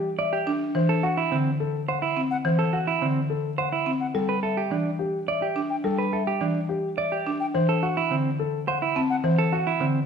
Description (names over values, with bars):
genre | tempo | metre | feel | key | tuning
classical, minimalist pattern music | 106 BPM | 3/4 | straight | G major | A4 = 441 Hz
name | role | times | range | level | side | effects
dark baby grand piano | melody | 0.0-9.7 s | G4 to A5 | -30 LUFS | left 6 dB | none
semi-hollow electric guitar | arpeggios | 0.2-10.0 s | C4 to D5 | -27 LUFS | right 6 dB | none
buzzing marimba with medium hard mallets | accompaniment | 0.5-10.0 s | D3 to D4 | -26 LUFS | equal | none
concert flute | arpeggios | 2.3-9.2 s | F#5 to G5 | -32 LUFS | left 4 dB | none
room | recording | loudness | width
moderate recital hall reverb, RT60 1.6 s | minimal, uncompressed stereo recording | -22 LUFS | side -6 dB against mid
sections
0.0-10.1 A section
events
none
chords
0.0 G5; 0.7 D7; 4.1 G5; 7.5 D7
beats
0.18 | 0.75 1.31 1.88 | 2.45 3.01 3.58 | 4.14 4.71 5.28 | 5.84 6.41 6.97 | 7.54 8.11 8.67 | 9.24 9.81